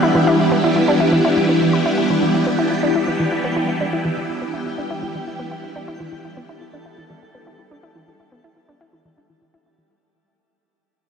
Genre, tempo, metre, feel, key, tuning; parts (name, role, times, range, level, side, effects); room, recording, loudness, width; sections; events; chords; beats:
ambient, sequencer-driven space music; 123 BPM; 4/4; straight; A4 = 440 Hz
phased string machine; sustained chords; 0.0-9.9 s; E3 to G4; -18 LUFS; equal; ensemble chorus, phaser, shimmer reverb
analog pluck; riff; 0.0-9.9 s; E3 to B4; -22 LUFS; equal; chorus, ping-pong delay, shimmer reverb
twinkling granular texture; texture; 0.0-9.9 s; G3 to G5; -26 LUFS; left 1 dB; built-in reverb, shimmer reverb
wet lush hall reverb, RT60 3.1 s; dark, warm production; -16 LUFS; side -6 dB against mid
0.0-9.9 A section
fade-out 0.0-9.9; filter sweep on synth arpeggio sound 0.0-9.9
0.0 Em7
| 0.15 0.64 1.12 1.61 | 2.10 2.59 3.08 3.56 | 4.05 4.54 5.03 5.52 | 6.00 6.49 6.98 7.47 | 7.96 8.44 8.93 9.42